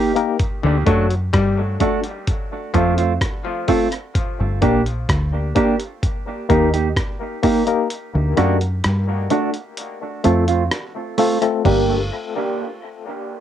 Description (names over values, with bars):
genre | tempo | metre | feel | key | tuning
dub reggae | 64 BPM | 4/4 | straight | G minor | A4 = 440 Hz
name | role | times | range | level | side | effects
mellow electric guitar | accompaniment | 0.0-11.9 s | A3 to G4 | -21 LUFS | right 7 dB | low-pass filter, cassette tape, dub echo
barky reed electric piano | stabs | 0.0-12.0 s | A3 to Bb4 | -22 LUFS | left 7 dB | overdrive, fast tremolo, low-pass filter, cassette tape, dub echo
dusty soul sampler-style drum kit | drums | 0.2-11.9 s | crash cymbal, hi-hat, kick drum, rim click | -23 LUFS | equal | cassette tape
clav | riff | 0.6-3.0 s | D3 to G3 | -27 LUFS | left 6 dB | low-pass filter, cassette tape, dub echo
deep dub fingered electric bass | bass | 0.6-12.1 s | G1 to G2 | -19 LUFS | equal | none
room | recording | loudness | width
light reverb | home recording on cassette | -17 LUFS | side -10 dB against mid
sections
0.0-11.7 A section; 11.7-13.4 B section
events
filter sweep 0.0-11.7; kick muted 7.9-11.7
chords
0.4 D; 2.3 F; 4.2 Gm; 6.0 Eb; 7.9 D; 9.8 F; 11.7 Gm